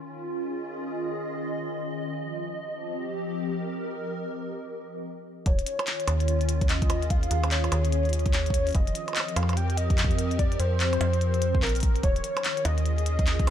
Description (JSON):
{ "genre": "IDM", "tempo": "146 BPM", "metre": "4/4", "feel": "swing 62% on 16ths", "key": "unclear", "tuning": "A4 = 439 Hz", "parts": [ { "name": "hollow soft pad", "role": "sustained chords", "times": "0.0-13.5 s", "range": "Eb3 to Eb5", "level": "-32 LUFS", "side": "left 1 dB", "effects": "ensemble chorus" }, { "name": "warbly nostalgic lead", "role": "melody", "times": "5.5-13.5 s", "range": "Bb4 to G5", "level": "-30 LUFS", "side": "left 1 dB", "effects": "tremolo, analog chorus, vintage 12-bit sampler grit, dub echo" }, { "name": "metallic FM bass", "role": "bass", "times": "5.5-13.5 s", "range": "Eb1 to F2", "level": "-26 LUFS", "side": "equal", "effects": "none" }, { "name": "electronic kick drum", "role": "drums", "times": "5.5-13.5 s", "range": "none", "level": "-25 LUFS", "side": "equal", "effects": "none" }, { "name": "glitchy drum kit", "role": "drums", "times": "5.5-13.5 s", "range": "handclaps, hi-hat, percussion blips", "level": "-31 LUFS", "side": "equal", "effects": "low-pass filter on hats, low-pass filter on perc, low-pass filter on snare" } ], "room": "light reverb", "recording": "none", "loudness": "-24 LUFS", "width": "side -10 dB against mid", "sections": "0.0-5.5 A section; 5.5-13.5 B section", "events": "filter sweep on drum 0.0-5.5; stop 5.0-5.5", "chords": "0.0 Eb9sus4; 2.2 F9sus4; 5.5 Eb9sus4; 8.7 F9sus4; 12.0 Eb9sus4" }